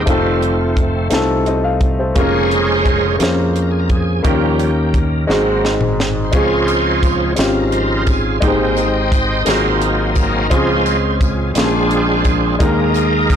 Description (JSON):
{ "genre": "slow gospel", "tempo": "58 BPM (dotted quarters)", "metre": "6/8", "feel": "straight", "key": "Ab major", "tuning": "A4 = 439 Hz", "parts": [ { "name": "clear grand piano", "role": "accompaniment", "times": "0.0-13.4 s", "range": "Ab2 to F5", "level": "-18 LUFS", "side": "left 2 dB", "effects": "none" }, { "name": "bright tonewheel organ", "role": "sustained chords", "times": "0.0-13.4 s", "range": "Db3 to G5", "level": "-18 LUFS", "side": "right 3 dB", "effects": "slow rotary speaker, chorus vibrato" }, { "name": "fingered electric bass", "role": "bass", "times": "0.0-13.4 s", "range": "F1 to F2", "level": "-20 LUFS", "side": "equal", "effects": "tube saturation" }, { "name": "crisp fusion drum kit", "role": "drums", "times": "0.1-13.4 s", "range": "hi-hat, kick drum, snare drum, toms", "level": "-19 LUFS", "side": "equal", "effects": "none" }, { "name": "tambourine", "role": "percussion", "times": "6.7-13.4 s", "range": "none", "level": "-34 LUFS", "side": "left 6 dB", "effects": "none" } ], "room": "light reverb", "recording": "blown-out, overdriven recording, overdrive", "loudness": "-13 LUFS", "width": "side -8 dB against mid", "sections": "0.0-13.4 A section", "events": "tonewheel organ solo 0.0-13.4; drum fill 5.3-6.3", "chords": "0.1 F7; 2.2 Bbm7/F; 4.2 Eb7; 5.3 Ab7; 6.3 Dbmaj7; 8.4 Abmaj7; 9.5 Ab13; 10.5 Dbmaj7; 11.6 Bb7; 12.6 Ebsus4" }